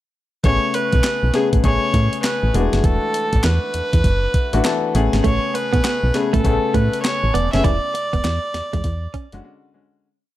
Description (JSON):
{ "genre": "R&B, new jack swing", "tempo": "100 BPM", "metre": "4/4", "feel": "swing 63% on 16ths", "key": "A major", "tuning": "A4 = 438 Hz", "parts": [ { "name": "dark viola", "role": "melody", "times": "0.4-9.4 s", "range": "G#4 to E5", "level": "-22 LUFS", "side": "right 1 dB", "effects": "none" }, { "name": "clear grand piano", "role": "accompaniment", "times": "0.4-10.1 s", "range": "C#3 to B4", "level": "-23 LUFS", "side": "left 5 dB", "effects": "none" }, { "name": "solid FM bass", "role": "bass", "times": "0.4-9.4 s", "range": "E1 to A2", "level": "-19 LUFS", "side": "equal", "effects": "none" }, { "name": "crisp 8-bit digital drum machine", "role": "drums", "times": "0.4-9.4 s", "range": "handclaps, hi-hat, kick drum, snare drum", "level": "-21 LUFS", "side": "equal", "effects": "none" }, { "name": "direct-recorded clean electric guitar", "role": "riff", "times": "5.2-9.3 s", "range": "G#3 to E4", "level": "-25 LUFS", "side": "right 8 dB", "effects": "lush chorus" } ], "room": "digital ambience", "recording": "none", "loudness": "-16 LUFS", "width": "side -14 dB against mid", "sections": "0.4-10.0 verse", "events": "fade-out 7.6-10.0; break 9.4-10.0", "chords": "0.4 Amaj9; 2.5 E9sus4; 4.9 Amaj9; 7.6 E13" }